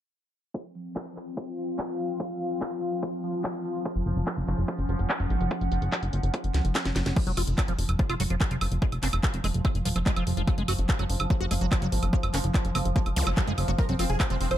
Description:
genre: psychedelic trance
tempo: 145 BPM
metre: 4/4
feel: straight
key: unclear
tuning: A4 = 440 Hz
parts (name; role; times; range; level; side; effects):
- pulsing gated texture; sustained chords; 0.5-14.6 s; F3; -35 LUFS; right 2 dB; chorus, built-in reverb, sidechain pumping
- drum and bass drum kit; drums; 0.5-14.6 s; crash cymbal, handclaps, hi-hat, snare drum, woodblock; -32 LUFS; right 1 dB; none
- electronic kick drum; drums; 0.5-14.3 s; none; -27 LUFS; equal; high-pass filter on kick, high-pass filter on room
- airy breathy pad; texture; 0.5-7.2 s; C4 to Gb5; -33 LUFS; left 2 dB; chorus, sidechain pumping
- plucky analog bass; bass; 4.0-14.6 s; Eb1 to Db2; -27 LUFS; equal; none
- liquid acid bass; riff; 7.2-14.4 s; F3 to Gb4; -34 LUFS; right 1 dB; chorus, auto-pan, vintage 12-bit sampler grit, sidechain pumping, tape echo
- zap; sound effects; 13.2-13.3 s; none; -38 LUFS; left 1 dB; none
- dense compressed supersaw; melody; 13.8-14.6 s; C4 to C5; -30 LUFS; right 1 dB; phaser, sidechain pumping, tape echo
room: light reverb, digital ambience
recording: low-pass filter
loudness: -24 LUFS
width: side -12 dB against mid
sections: 0.5-7.2 A section; 7.2-14.6 B section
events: filter sweep 0.5-7.2; drum fill 6.5-7.2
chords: 0.5 F5; 3.9 Gb5; 7.2 F5; 10.5 Gb5; 13.8 F5

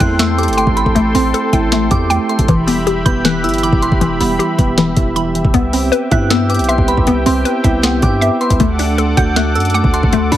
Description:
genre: hip hop, trap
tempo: 157 BPM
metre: 4/4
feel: half-time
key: E minor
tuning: A4 = 440 Hz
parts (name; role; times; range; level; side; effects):
- soft synth bell; second line; 0.0-10.4 s; B5 to G6; -22 LUFS; equal; chorus, tape echo
- soft electric-piano-like synth keys; accompaniment; 0.0-10.4 s; E3 to A5; -19 LUFS; right 4 dB; chorus
- warm analog pad; sustained chords; 0.0-10.4 s; G4 to D6; -21 LUFS; left 1 dB; chorus
- hollow square pluck; arpeggios; 0.0-10.4 s; E3 to B5; -18 LUFS; left 4 dB; chorus, tape echo
- hard-hitting 808-style bass; bass; 0.0-10.4 s; E1 to G2; -18 LUFS; equal; none
- trap drum kit; drums; 0.0-10.4 s; hi-hat, kick drum, snare drum; -17 LUFS; equal; none
room: light reverb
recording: heavily compressed radio sound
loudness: -11 LUFS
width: side -12 dB against mid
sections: 0.0-10.4 A section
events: none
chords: 0.0 Am7; 2.5 Em; 5.5 Cmaj7; 8.6 D

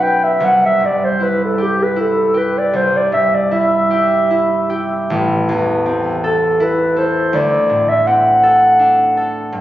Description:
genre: classical, romantic duo for clarinet and harp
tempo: 48-56 BPM (dotted quarters)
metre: 12/8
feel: rubato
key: unclear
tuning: A4 = 440 Hz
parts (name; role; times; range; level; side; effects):
- dark clarinet; melody; 0.0-9.5 s; G4 to G5; -13 LUFS; equal; none
- concert harp; accompaniment; 0.0-9.6 s; A1 to B4; -18 LUFS; equal; none
room: wet scoring stage reverb, RT60 1.7 s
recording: recorded on a phone in the room, club reverb, nothing above 7.4 kHz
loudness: -12 LUFS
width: side -14 dB against mid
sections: 0.0-9.6 A section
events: none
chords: 0.4 C; 5.1 Am; 7.3 D7

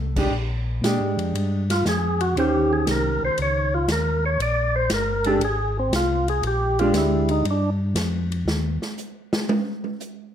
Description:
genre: soul jazz organ trio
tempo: 118 BPM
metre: 4/4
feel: swing 68% on 8ths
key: Bb mixolydian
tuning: A4 = 440 Hz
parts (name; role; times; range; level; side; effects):
- mellow tonewheel organ; bass; 0.0-8.8 s; G1 to Bb2; -24 LUFS; left 1 dB; overdrive, chorus vibrato
- vintage hollow-body jazz guitar; accompaniment; 0.2-7.4 s; Eb3 to C5; -23 LUFS; right 2 dB; none
- swinging big-band drum kit; drums; 0.2-10.2 s; crash cymbal, hi-hat, kick drum, ride cymbal, snare drum, toms; -28 LUFS; equal; none
- percussive tonewheel organ; melody; 1.7-7.7 s; C4 to D5; -23 LUFS; equal; slow rotary speaker, overdrive, plate reverb
room: moderate large studio reverb, RT60 0.9 s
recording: none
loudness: -20 LUFS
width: side -9 dB against mid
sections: 0.3-10.3 A section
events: tonewheel organ solo 0.3-10.3; drum solo 8.5-10.3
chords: 0.3 Bb6; 2.4 Eb6; 4.4 Bb13; 8.5 N.C.

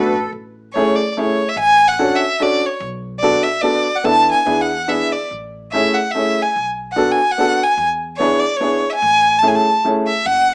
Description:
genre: musette waltz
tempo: 145 BPM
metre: 3/4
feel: swing 54% on 8ths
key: A major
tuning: A4 = 440 Hz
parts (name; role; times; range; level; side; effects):
- clear violin; melody; 0.0-10.5 s; B4 to A5; -18 LUFS; equal; none
- clear upright piano; accompaniment; 0.0-10.1 s; A3 to A4; -20 LUFS; equal; none
- upright bass; bass; 0.0-10.5 s; F#1 to E2; -38 LUFS; equal; none
room: moderate small room reverb, RT60 0.5 s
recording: small speaker sound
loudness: -16 LUFS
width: mono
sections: 0.3-10.3 A section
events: none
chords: 0.3 Amaj7; 1.6 Dmaj7/A; 2.8 Bm7; 4.0 E7sus4; 4.5 E7; 5.3 Amaj7; 6.6 Bm7; 7.8 E7; 9.0 Amaj7

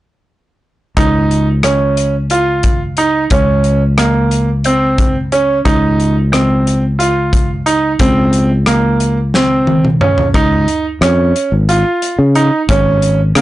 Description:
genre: progressive instrumental, band music in an uneven meter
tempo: 179 BPM (eighths)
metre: 7/8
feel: straight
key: Db major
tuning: A4 = 440 Hz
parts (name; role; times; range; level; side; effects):
- bright grand piano; arpeggios; 1.0-13.4 s; Bb3 to F4; -14 LUFS; right 2 dB; none
- fretless electric bass; bass; 1.0-13.4 s; Ab1 to Db3; -14 LUFS; left 1 dB; transformer saturation
- modern studio drum kit; drums; 1.0-13.4 s; hi-hat, kick drum, rim click, snare drum, toms; -16 LUFS; left 1 dB; none
room: light reverb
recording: blown-out, overdriven recording, overdrive, nothing above 10.7 kHz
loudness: -10 LUFS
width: side -15 dB against mid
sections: 1.0-10.3 A section; 10.3-13.4 B section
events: drum fill 9.3-10.3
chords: 1.0 Dbmaj7sus2; 10.3 Db

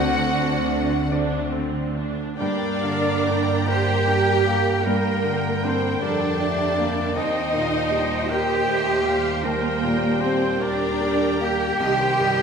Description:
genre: cinematic, emotional film score for orchestra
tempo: 46-53 BPM (dotted quarters)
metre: 6/8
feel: rubato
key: G minor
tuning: A4 = 440 Hz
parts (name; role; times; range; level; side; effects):
- clear symphonic violin section; melody; 0.0-12.4 s; F5 to C6; -35 LUFS; left 3 dB; none
- clear symphonic violin section; second line; 0.0-12.4 s; F#4 to G5; -33 LUFS; left 4 dB; none
- mellow concert flute; second line; 0.0-12.4 s; Bb4 to G5; -29 LUFS; left 1 dB; none
- warm oboe; second line; 0.0-12.4 s; F#4 to G5; -29 LUFS; right 1 dB; none
- bright baby grand piano; accompaniment; 0.0-12.4 s; C2 to D5; -28 LUFS; left 3 dB; none
- warm symphonic viola section; accompaniment; 0.0-12.4 s; C4 to G5; -29 LUFS; right 2 dB; none
- dark French horn section; sustained chords; 0.0-12.4 s; Eb3 to D4; -29 LUFS; left 3 dB; none
- rich symphonic cello section; bass; 0.0-12.4 s; D3 to G4; -25 LUFS; right 4 dB; none
- rich symphonic double bass section; bass; 0.0-12.4 s; C2 to G2; -29 LUFS; right 4 dB; none
- timpani; percussion; 0.0-1.1 s; D3; -34 LUFS; left 1 dB; none
room: wet scoring stage reverb, RT60 2.0 s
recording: minimal, uncompressed stereo recording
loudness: -19 LUFS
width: side -6 dB against mid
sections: 0.0-2.4 A section; 2.4-12.4 B section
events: none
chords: 0.0 D7; 2.4 Gm; 7.2 Eb; 11.8 Cm

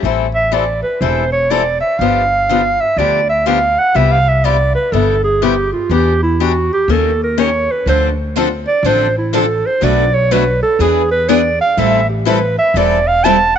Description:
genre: acoustic string swing (jazz manouche)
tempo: 123 BPM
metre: 4/4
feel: swing 64% on 8ths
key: A minor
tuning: A4 = 440 Hz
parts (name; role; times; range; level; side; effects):
- picked steel-string acoustic guitar; accompaniment; 0.0-13.4 s; B2 to A#4; -18 LUFS; left 13 dB; none
- upright bass; bass; 0.0-13.5 s; E1 to E2; -18 LUFS; equal; none
- warm clarinet; melody; 0.3-13.6 s; E4 to A5; -14 LUFS; right 3 dB; none
- picked steel-string acoustic guitar; accompaniment; 7.9-13.4 s; B2 to B4; -21 LUFS; right 13 dB; none
room: light reverb, small room ambience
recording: 1960s-style stereo with parts hard left and right, nothing above 7.9 kHz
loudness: -11 LUFS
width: side -8 dB against mid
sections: 0.0-13.6 A section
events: clarinet solo 0.0-13.6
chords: 0.0 Am7; 2.0 G7; 3.9 Cmaj7; 5.9 Em7; 6.9 D#7; 7.9 Dm7; 9.8 Bm7; 10.8 E7; 11.8 Am7

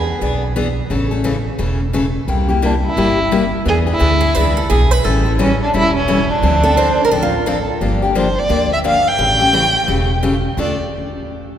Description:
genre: acoustic string swing (jazz manouche)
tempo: 174 BPM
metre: 4/4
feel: swing 61% on 8ths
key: D minor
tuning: A4 = 439 Hz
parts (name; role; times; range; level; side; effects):
- picked steel-string acoustic guitar; second line; 0.0-0.5, 4.2-7.8 s; F4 to C5; -22 LUFS; right 3 dB; none
- upright bass; bass; 0.0-10.8 s; E1 to E2; -19 LUFS; equal; none
- picked steel-string acoustic guitar; accompaniment; 0.2-10.8 s; C3 to A4; -18 LUFS; left 3 dB; none
- warm violin; melody; 2.6-10.8 s; C#4 to G5; -18 LUFS; right 1 dB; none
room: wet cathedral reverb, RT60 4.5 s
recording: recorded in a church or concert hall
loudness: -13 LUFS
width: side -10 dB against mid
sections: 0.0-7.8 A section; 7.8-10.6 B section; 10.6-11.6 C section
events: none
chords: 0.0 E7; 0.9 A; 2.3 C7; 3.7 E7; 5.0 A7; 6.4 Dm7; 7.8 Gm7; 9.2 A7; 10.6 Dm

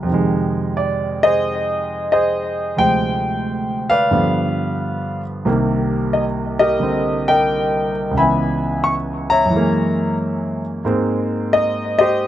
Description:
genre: solo jazz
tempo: 89 BPM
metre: 4/4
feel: swing 68% on 8ths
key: unclear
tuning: A4 = 435 Hz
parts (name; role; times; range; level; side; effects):
- warm concert grand piano; solo; 0.0-12.3 s; C2 to Db6; -16 LUFS; equal; slapback echo
room: light reverb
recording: recorded outdoors, with no room sound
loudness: -16 LUFS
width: side -12 dB against mid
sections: 0.0-12.3 A section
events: none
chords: 0.1 Fm7; 2.8 Dm7b5; 4.1 G7; 5.5 Cm7; 8.2 Dbm7; 9.5 Gb9; 10.8 Abmaj9

